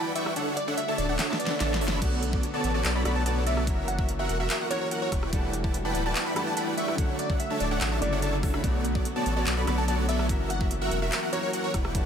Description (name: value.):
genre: future bass.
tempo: 145 BPM.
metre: 4/4.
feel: half-time.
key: B minor.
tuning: A4 = 439 Hz.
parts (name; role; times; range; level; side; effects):
shimmering ambient pad; sustained chords; 0.0-12.1 s; C#3 to A4; -38 LUFS; equal; chorus, built-in reverb, phaser, sidechain pumping.
wide unison pluck; arpeggios; 0.0-12.1 s; C#5 to C#6; -39 LUFS; equal; cassette tape, sidechain pumping.
dense compressed supersaw; riff; 0.0-12.1 s; B3 to C#6; -30 LUFS; right 1 dB; sidechain pumping.
plucky unison lead; melody; 0.2-11.8 s; C#5 to B5; -33 LUFS; left 1 dB; sidechain pumping, digital delay.
pop drum kit; drums; 0.2-12.0 s; crash cymbal, handclaps, hi-hat, rim click, snare drum; -33 LUFS; equal; none.
saturated sub bass; bass; 1.0-12.1 s; D1 to B1; -30 LUFS; equal; sidechain pumping.
swell; sound effects; 1.3-2.0 s; none; -41 LUFS; right 3 dB; none.
clear concert grand piano; accompaniment; 2.0-12.1 s; C#3 to F#4; -34 LUFS; left 2 dB; sidechain pumping, digital delay.
electronic kick drum; drums; 2.0-12.0 s; none; -28 LUFS; equal; none.
room: light reverb, digital ambience.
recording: none.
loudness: -24 LUFS.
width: side -8 dB against mid.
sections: 0.0-12.1 A section.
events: kick drops out 0.4-2.0; drum fill 1.2-2.0; swell 1.3-2.0.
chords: 0.4 Dmaj7; 2.0 Bm7; 3.7 F#7; 5.1 Em11; 7.0 Dmaj7; 8.6 Bm7; 10.3 F#7.